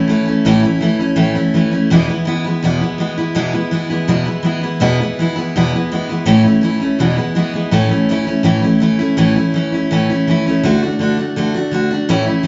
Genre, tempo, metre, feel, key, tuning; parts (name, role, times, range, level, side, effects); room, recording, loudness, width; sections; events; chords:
rock; 165 BPM; 4/4; straight; A major; A4 = 440 Hz
picked steel-string acoustic guitar; solo; 0.0-12.5 s; E2 to F#4; -15 LUFS; equal
wet stone room reverb, RT60 1.2 s; band playing live in one room, nothing above 7.7 kHz; -15 LUFS; mono
0.0-7.7 A section; 7.7-12.5 A section
0.0 A; 1.9 E; 6.3 A; 7.0 E; 7.7 A; 10.6 D